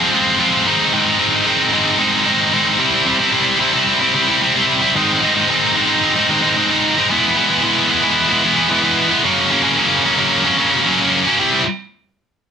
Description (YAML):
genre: rock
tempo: 112 BPM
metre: 4/4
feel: straight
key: unclear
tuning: A4 = 440 Hz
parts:
  - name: heavy high-gain guitar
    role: solo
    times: 0.0-11.6 s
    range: F#2 to F4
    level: -12 LUFS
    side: equal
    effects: distortion
room: moderate studio reverb, RT60 0.5 s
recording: dense, heavily limited modern master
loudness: -12 LUFS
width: side -7 dB against mid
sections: 0.0-2.8 A section; 2.8-11.4 B section; 11.4-12.5 C section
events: none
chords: 0.0 Fm; 0.7 Ab; 2.8 C; 4.9 Ab; 7.1 E; 9.2 F#; 11.4 C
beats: 0.12 | 0.66 1.19 1.73 2.27 | 2.80 3.34 3.87 4.41 | 4.95 5.48 6.02 6.56 | 7.09 7.63 8.17 8.71 | 9.24 9.78 10.32 10.86 | 11.40